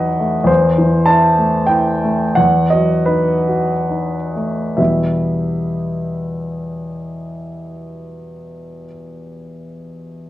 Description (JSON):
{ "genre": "classical, romantic character piece for solo piano", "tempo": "62-105 BPM", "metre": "3/4", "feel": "rubato", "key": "E minor", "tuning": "A4 = 441 Hz", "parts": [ { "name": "warm grand piano", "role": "solo", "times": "0.0-10.3 s", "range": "E2 to A5", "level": "-15 LUFS", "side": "equal", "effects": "none" } ], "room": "wet large studio reverb, RT60 0.9 s", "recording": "worn, warbling old tape, cassette tape, warbly pitch drift", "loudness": "-14 LUFS", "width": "side -14 dB against mid", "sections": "0.0-4.8 A section; 4.8-9.6 B section", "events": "slowing down 0.0-4.8", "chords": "0.5 Am/E; 2.4 B7/E; 4.8 Em" }